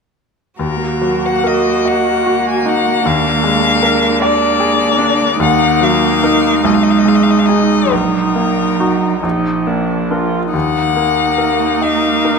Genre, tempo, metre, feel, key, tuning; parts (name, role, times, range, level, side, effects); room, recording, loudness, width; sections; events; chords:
classical, slow romantic movement for piano quartet; 45-52 BPM (dotted quarters); 6/8; rubato; Eb minor; A4 = 437 Hz
rich violin; melody; 0.6-12.4 s; Bb4 to Ab5; -16 LUFS; left 8 dB
rich cello; second line; 0.6-12.4 s; F3 to Bb3; -17 LUFS; right 5 dB
bright grand piano; accompaniment; 0.6-12.4 s; Bb1 to Eb5; -17 LUFS; left 2 dB
warm viola; accompaniment; 0.6-12.4 s; D4 to Gb4; -18 LUFS; right 2 dB
moderate scoring stage reverb, RT60 1.7 s; close, detailed microphones; -11 LUFS; side -5 dB against mid
0.6-12.4 A section
0.6 Ebm; 3.1 Bb7/Eb; 5.4 Ebm; 6.6 Abm/Cb; 7.9 Ebm/Bb; 9.2 Bb; 10.5 Ebm